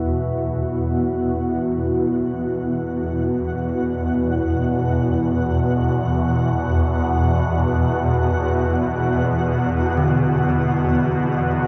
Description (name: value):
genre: dark ambient drone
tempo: free time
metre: none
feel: none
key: unclear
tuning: A4 = 440 Hz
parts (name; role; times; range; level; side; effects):
- deep dark ambient pad; sustained chords; 0.0-11.7 s; B3 to E5; -27 LUFS; equal; chorus, built-in reverb
- gamelan-type bronze metallophone; arpeggios; 0.0-11.7 s; D3 to F#3; -26 LUFS; equal; none
- swarming drone; drone; 0.0-11.7 s; E2 to B2; -22 LUFS; equal; built-in reverb, phaser
- flickering grainy texture; texture; 0.0-11.7 s; F#4 to F#5; -32 LUFS; equal; built-in reverb
room: moderate huge ambient reverb, RT60 7.2 s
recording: none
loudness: -20 LUFS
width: mono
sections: 0.0-11.7 A section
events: fade-in on synth texture 0.0-11.7; fade-in on bronze metallophone 0.0-11.7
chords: 0.0 Esus2